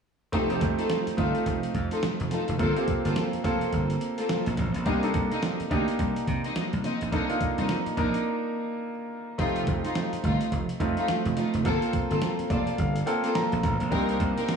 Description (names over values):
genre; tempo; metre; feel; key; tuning
R&B, new jack swing; 106 BPM; 4/4; swing 60% on 16ths; unclear; A4 = 440 Hz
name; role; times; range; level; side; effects
clear baby grand piano; accompaniment; 0.3-14.6 s; A3 to Bb5; -29 LUFS; right 2 dB; none
warm studio string section; stabs; 0.3-14.5 s; A3 to Bb4; -31 LUFS; left 2 dB; tape echo
slap bass; bass; 0.3-14.3 s; F1 to C3; -29 LUFS; right 1 dB; none
dusty soul sampler-style drum kit; drums; 0.3-14.6 s; hi-hat, kick drum, snare drum; -31 LUFS; right 1 dB; overdrive
room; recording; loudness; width
moderate echo chamber reverb, RT60 1.7 s; studio ambience; -24 LUFS; side -6 dB against mid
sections
0.3-9.4 A section; 9.4-14.6 B section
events
break 8.3-9.4; grand piano fill 12.2-13.9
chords
0.3 F7; 2.6 Gm11; 4.9 Cm7; 9.4 F7; 11.7 Gm11; 13.9 Cm7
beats
| 0.33 0.90 1.46 2.03 | 2.60 3.16 3.73 4.29 | 4.86 5.42 5.99 6.56 | 7.12 7.69 8.26 8.82 | 9.39 9.95 10.52 11.09 | 11.65 12.22 12.78 13.35 | 13.92 14.48